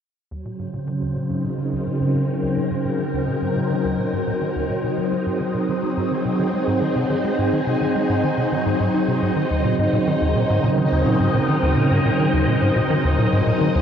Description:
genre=ambient, sequencer-driven space music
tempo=106 BPM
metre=4/4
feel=straight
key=Eb dorian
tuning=A4 = 440 Hz
part: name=phased string machine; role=sustained chords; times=0.3-13.8 s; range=Db3 to Eb5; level=-21 LUFS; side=equal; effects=ensemble chorus, phaser
part: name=tight sequencer bass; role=riff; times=0.3-13.8 s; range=Eb2 to Eb4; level=-24 LUFS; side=equal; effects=ping-pong delay
part: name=wind-like tuned noise texture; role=texture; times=0.9-13.8 s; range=C4 to C5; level=-26 LUFS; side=equal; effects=built-in reverb
room=wet huge ambient reverb, RT60 6.9 s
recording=worn, warbling old tape, cassette tape, warbly pitch drift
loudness=-18 LUFS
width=side -8 dB against mid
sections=0.3-13.8 A section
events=fade-in on analog synth bass 0.3-13.8; filter sweep on string machine 0.3-13.8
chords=0.3 Ebm7; 4.8 Ab7; 9.4 Ebm7

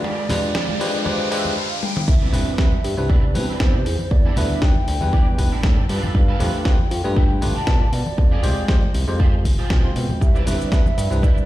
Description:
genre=nu-disco, nu disco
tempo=118 BPM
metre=4/4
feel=swing 54% on 16ths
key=C major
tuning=A4 = 441 Hz
part: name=mellow hollow concert flute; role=melody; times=0.0-11.5 s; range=B4 to A5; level=-29 LUFS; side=right 1 dB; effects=tape echo
part: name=bell-like tine electric piano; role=accompaniment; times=0.0-11.5 s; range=G3 to G5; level=-27 LUFS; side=equal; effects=sidechain pumping, slapback echo
part: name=electric guitar at the edge of break-up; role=riff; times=0.0-11.4 s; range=Ab3 to G5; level=-30 LUFS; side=right 2 dB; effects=ensemble chorus, vintage 12-bit sampler grit, slapback echo
part: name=fat analog bass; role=bass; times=0.0-11.5 s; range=E1 to C3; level=-22 LUFS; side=equal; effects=high-pass filter
part: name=electronic kick drum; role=drums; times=0.0-11.3 s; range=none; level=-17 LUFS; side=equal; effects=high-pass filter on kick
part: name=riser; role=sound effects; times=0.0-2.1 s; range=none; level=-27 LUFS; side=equal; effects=none
part: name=dusty soul sampler-style drum kit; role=drums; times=0.3-11.5 s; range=crash cymbal, hi-hat, shaker, snare drum, toms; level=-28 LUFS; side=left 1 dB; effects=none
part: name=congas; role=percussion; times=0.3-11.3 s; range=none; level=-27 LUFS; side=equal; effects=none
room=digital ambience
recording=played on a big sound system in a bare room, stone room reverb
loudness=-16 LUFS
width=side -15 dB against mid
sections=0.0-2.1 A section; 2.1-11.5 B section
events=build-up 0.0-2.1; riser 0.0-2.1; clean electric guitar fill 0.6-2.1; break 1.6-2.1; drum fill 1.8; drop 2.1-11.5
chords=0.0 Fmadd9; 2.1 Cmaj9; 4.1 Em7; 5.9 G9; 8.2 Fmadd9; 10.2 Cmaj9

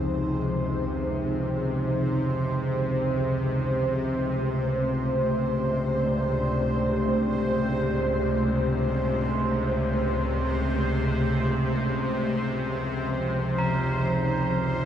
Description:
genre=dark ambient drone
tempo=free time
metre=none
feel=none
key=unclear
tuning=A4 = 440 Hz
part: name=dark analog pad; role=sustained chords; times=0.0-14.9 s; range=F3 to D5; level=-28 LUFS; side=equal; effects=chorus, phaser, shimmer reverb
part: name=bowed-like drone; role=drone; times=0.0-14.9 s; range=C#2 to C3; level=-26 LUFS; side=equal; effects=built-in reverb
part: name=bubbling stepped-filter texture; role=texture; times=0.0-14.9 s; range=C5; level=-32 LUFS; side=right 1 dB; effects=chorus, built-in reverb, shimmer reverb
part: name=tubular bells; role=arpeggios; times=13.6-14.9 s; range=A#4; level=-30 LUFS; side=right 3 dB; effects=shimmer reverb
room=wet huge ambient reverb, RT60 8.4 s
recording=dark, warm production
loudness=-23 LUFS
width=side -9 dB against mid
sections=0.0-14.9 A section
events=none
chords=0.0 Fm; 4.1 Am; 12.6 F5

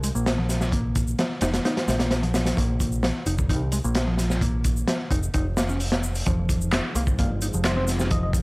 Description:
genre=breakbeat, breaks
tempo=130 BPM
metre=4/4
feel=straight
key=unclear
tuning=A4 = 440 Hz
part: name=picked electric bass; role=riff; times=0.0-8.4 s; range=F3 to Eb4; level=-29 LUFS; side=equal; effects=tape echo
part: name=deep dub picked electric bass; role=bass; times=0.0-8.4 s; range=F1 to C2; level=-26 LUFS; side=equal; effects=none
part: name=crunchy breakbeat drum kit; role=drums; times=0.0-8.4 s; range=hi-hat, kick drum, snare drum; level=-24 LUFS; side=equal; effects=none
part: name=electronic shaker and handclaps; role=drums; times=0.0-8.4 s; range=none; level=-34 LUFS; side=equal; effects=none
part: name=lush unison pad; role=sustained chords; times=6.3-8.4 s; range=F3 to C5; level=-34 LUFS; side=equal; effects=chorus, vintage 12-bit sampler grit, sidechain pumping
part: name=soft struck synth lead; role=melody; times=7.6-8.3 s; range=C5 to Eb5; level=-30 LUFS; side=equal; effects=chorus, old record sound, cassette tape, tape echo
room=small room ambience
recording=dry, gritty hardware recording, vinyl crackle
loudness=-21 LUFS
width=side -26 dB against mid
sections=0.0-8.4 A section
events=none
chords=0.0 Bb5; 6.3 Fm9

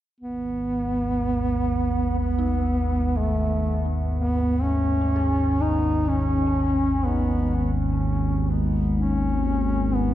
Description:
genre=dark ambient drone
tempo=62 BPM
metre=4/4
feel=straight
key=unclear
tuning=A4 = 436 Hz
part: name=mellow duduk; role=melody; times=0.2-10.1 s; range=A3 to D#4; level=-24 LUFS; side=equal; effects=analog delay
part: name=analog drone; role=drone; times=0.3-10.1 s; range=G#1 to D#2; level=-23 LUFS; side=equal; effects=chorus
part: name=dark detuned synth bell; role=arpeggios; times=2.4-10.1 s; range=G#3 to G#4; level=-42 LUFS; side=left 3 dB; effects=none
room=moderate plate reverb, RT60 3.0 s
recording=echo-heavy mix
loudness=-21 LUFS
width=side -13 dB against mid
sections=0.2-10.1 A section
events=none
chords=0.2 G#m

